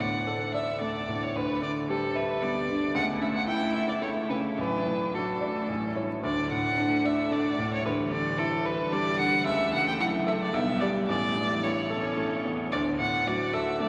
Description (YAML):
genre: quick classical-period movement for piano quartet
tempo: 111 BPM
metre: 3/4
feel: straight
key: D major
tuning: A4 = 440 Hz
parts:
  - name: rich violin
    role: melody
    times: 0.0-13.9 s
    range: A4 to G5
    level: -32 LUFS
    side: equal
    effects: none
  - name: clear baby grand piano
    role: accompaniment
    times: 0.0-13.9 s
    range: A1 to E5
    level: -31 LUFS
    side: equal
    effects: none
  - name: rich cello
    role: second line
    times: 0.3-13.9 s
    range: D3 to A3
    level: -39 LUFS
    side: equal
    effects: none
  - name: rich viola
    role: accompaniment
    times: 0.3-13.9 s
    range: G3 to E4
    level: -41 LUFS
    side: equal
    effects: none
room: wet cathedral reverb, RT60 5.4 s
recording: vinyl crackle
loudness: -28 LUFS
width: mono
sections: 0.0-6.2 A section; 6.2-13.9 A section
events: none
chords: 0.0 D; 1.4 Em7/D; 3.0 A/C#; 4.6 D/A; 5.7 A; 6.2 D; 7.9 Em7/D; 9.5 A/C#; 10.5 G/B; 11.1 A; 12.7 D